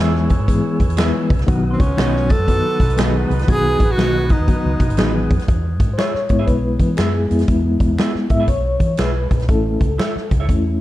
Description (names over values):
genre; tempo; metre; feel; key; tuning
uptempo 1960s-style soul; 120 BPM; 4/4; swing 64% on 8ths; E major; A4 = 440 Hz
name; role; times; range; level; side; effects
warm horn section; second line; 0.0-5.3 s; D#4 to C#5; -31 LUFS; right 2 dB; none
reed electric piano; accompaniment; 0.0-10.8 s; D#3 to E5; -20 LUFS; left 2 dB; fast tremolo
tonewheel organ; sustained chords; 0.0-5.4 s; B4 to E6; -33 LUFS; right 1 dB; slow rotary speaker, overdrive
electric guitar through a small old amp; stabs; 0.0-10.5 s; D#4 to E5; -29 LUFS; right 5 dB; none
vintage muted fingered electric bass; bass; 0.0-10.8 s; G#1 to E3; -20 LUFS; equal; none
swinging big-band drum kit; drums; 0.2-10.6 s; hi-hat, kick drum, snare drum; -19 LUFS; equal; none
finger snap; percussion; 1.0-10.1 s; none; -33 LUFS; left 1 dB; none
breathy tenor saxophone; melody; 1.7-5.3 s; C4 to A4; -21 LUFS; right 2 dB; none
glockenspiel with soft plastic mallets; second line; 1.7-5.3 s; C6 to A6; -35 LUFS; left 3 dB; none
room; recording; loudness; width
light reverb, small room ambience; dark, warm production; -15 LUFS; side -15 dB against mid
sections
0.0-5.5 A section; 5.5-10.8 B section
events
reed electric piano solo 5.5-10.8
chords
0.0 E; 1.5 B; 5.5 E; 9.5 A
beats
0.48 0.98 | 1.48 1.98 2.48 2.98 | 3.48 3.98 4.48 4.98 | 5.48 5.98 6.48 6.98 | 7.49 7.99 8.49 8.99 | 9.49 9.99 10.49